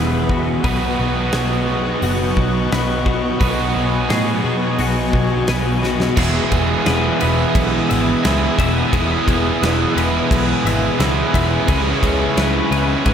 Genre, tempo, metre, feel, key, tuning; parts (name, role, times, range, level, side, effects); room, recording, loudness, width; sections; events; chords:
rock, shoegaze and dream pop; 87 BPM; 4/4; straight; E major; A4 = 440 Hz
chorused pulse-width pad; sustained chords; 0.0-13.1 s; G#4 to D#6; -25 LUFS; left 1 dB
twelve-string electric guitar; arpeggios; 0.0-13.1 s; F#4 to E5; -26 LUFS; left 6 dB; ensemble chorus, tape echo
biting overdriven guitar; riff; 0.0-13.1 s; E2 to F#4; -21 LUFS; right 6 dB; reverse reverb
thick fuzz guitar; riff; 0.0-13.1 s; E2 to C#4; -23 LUFS; left 6 dB; distortion, ensemble chorus
vintage muted picked electric bass; bass; 0.0-13.1 s; E1 to B2; -22 LUFS; equal
huge arena drum kit; drums; 0.3-13.1 s; crash cymbal, hi-hat, kick drum, ride cymbal, snare drum; -22 LUFS; equal
biting overdriven guitar; riff; 6.2-13.1 s; C#3 to E4; -24 LUFS; right 1 dB
wet huge ambient reverb, RT60 7.9 s; dreamy mix soaked in reverb; -15 LUFS; side -8 dB against mid
0.0-6.2 A section; 6.2-13.1 B section
drum fill 5.8-6.2
0.0 E; 0.6 Badd9; 6.2 Emaj7; 11.7 C#m7